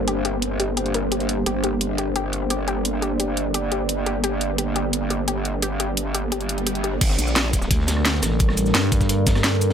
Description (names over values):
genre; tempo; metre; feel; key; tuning
dark technical drum and bass; 173 BPM; 4/4; straight; G minor; A4 = 440 Hz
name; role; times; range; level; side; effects
deep dark ambient pad; sustained chords; 0.0-9.7 s; G3 to D5; -28 LUFS; right 1 dB; chorus, built-in reverb, sidechain pumping
growl bass; bass; 0.0-7.7 s; G1 to Bb1; -26 LUFS; equal; chorus, sidechain pumping
deep dark ambient pad; texture; 0.0-9.7 s; Bb3 to D5; -28 LUFS; right 2 dB; chorus, built-in reverb, sidechain pumping
warbly dusty pluck; arpeggios; 0.1-7.0 s; G4 to Bb4; -29 LUFS; left 4 dB; chorus, vintage 12-bit sampler grit, sidechain pumping, digital delay
drum and bass drum kit; drums; 0.1-9.7 s; crash cymbal, hi-hat, rim click, shaker, snare drum; -23 LUFS; equal; overdrive
swell; sound effects; 6.5-7.0 s; none; -32 LUFS; equal; none
crunchy breakbeat drum kit; drums; 7.0-9.7 s; hi-hat, snare drum; -32 LUFS; equal; high-pass filter on hats, high-pass filter on snare, high-pass filter on room
electronic kick drum; drums; 7.0-9.3 s; none; -21 LUFS; equal; overdrive
growling FM bass; bass; 7.7-9.7 s; A1 to G2; -21 LUFS; equal; none
room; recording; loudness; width
light reverb; none; -20 LUFS; side -8 dB against mid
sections
0.0-7.0 A section; 7.0-9.7 B section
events
swell 6.5-7.0; drop 7.0-9.7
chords
0.0 Gm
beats
| 0.08 0.42 0.77 1.12 | 1.46 1.81 2.16 2.50 | 2.85 3.20 3.54 3.89 | 4.24 4.58 4.93 5.28 | 5.62 5.97 6.32 6.67 | 7.01 7.36 7.71 8.05 | 8.40 8.75 9.09 9.44